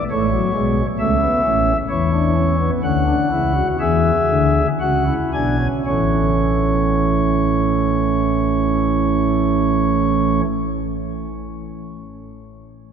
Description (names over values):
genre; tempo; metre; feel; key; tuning
classical, baroque-style 3-part fugue for pipe organ; 56-68 BPM; 4/4; straight; A major; A4 = 440 Hz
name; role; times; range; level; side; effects
pipe organ, flutes; solo; 0.0-10.4 s; A1 to G#5; -16 LUFS; right 1 dB; none
room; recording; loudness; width
wet cathedral reverb, RT60 5.4 s; none; -16 LUFS; side -7 dB against mid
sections
0.0-5.9 A section; 5.9-10.2 B section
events
slowing down 0.0-5.9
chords
0.1 A; 1.9 Dmaj13; 3.8 E7; 5.9 A